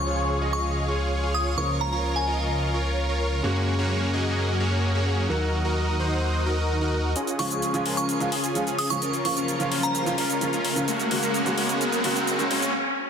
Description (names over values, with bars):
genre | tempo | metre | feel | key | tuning
EDM, festival progressive house | 129 BPM | 4/4 | straight | Db major | A4 = 441 Hz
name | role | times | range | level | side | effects
glassy synth bell | melody | 0.0-2.5, 7.4-10.2 s | Ab5 to Eb6 | -30 LUFS | equal | chorus, phaser, dub echo
warm grand piano | accompaniment | 0.0-12.7 s | Db3 to Gb4 | -30 LUFS | right 1 dB | vintage 12-bit sampler grit, dub echo
supersaw pad | sustained chords | 0.0-12.7 s | Db3 to Eb6 | -33 LUFS | equal | none
supersaw chords | riff | 0.0-12.7 s | Ab3 to Eb5 | -27 LUFS | equal | cassette tape, low-pass filter, dub echo
detuned saw bass | bass | 0.0-7.1 s | Db2 to Gb2 | -26 LUFS | equal | none
electronic hi-hat and shaker | drums | 7.2-12.7 s | none | -30 LUFS | left 1 dB | high-pass filter on cymbals, low-pass filter on cymbals, high-pass filter on hats, low-pass filter on hats, high-pass filter on perc, low-pass filter on perc
riser | sound effects | 8.9-12.7 s | none | -30 LUFS | left 1 dB | none
room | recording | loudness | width
moderate digital room reverb, RT60 1.1 s | dense, heavily limited modern master, high-pass filter | -22 LUFS | side -7 dB against mid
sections
0.0-7.2 A section; 7.2-13.1 B section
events
build-up 7.2-13.1; filter sweep on supersaw synth 7.2-13.1; riser 8.9-12.7; break 12.7-13.1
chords
0.0 Db; 1.6 Bbm/Db; 3.4 Gbadd9; 5.3 Ebm; 7.2 Db; 9.0 Bbm/Db; 10.9 Gbadd9